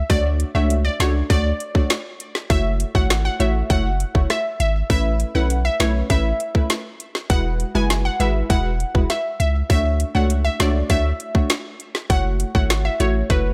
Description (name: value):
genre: dancehall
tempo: 100 BPM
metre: 4/4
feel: straight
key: unclear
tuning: A4 = 440 Hz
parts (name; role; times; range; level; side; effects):
- punchy sub bass; bass; 0.0-13.5 s; E1 to D2; -23 LUFS; equal; none
- glassy wavetable pluck; melody; 0.1-13.5 s; B4 to G#5; -28 LUFS; equal; chorus, delay
- wavetable chord stab; accompaniment; 0.1-13.5 s; G#3 to C#5; -27 LUFS; equal; none
- island pop drum kit; drums; 0.1-13.4 s; hi-hat, kick drum, rim click, snare drum; -23 LUFS; equal; none
room: little or no reverb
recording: none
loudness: -20 LUFS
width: mono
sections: 0.0-13.5 A section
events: none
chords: 0.1 Dmaj7; 2.5 F#m7; 4.9 Aadd9; 7.3 Eadd9; 9.7 Dmaj7; 12.1 F#m7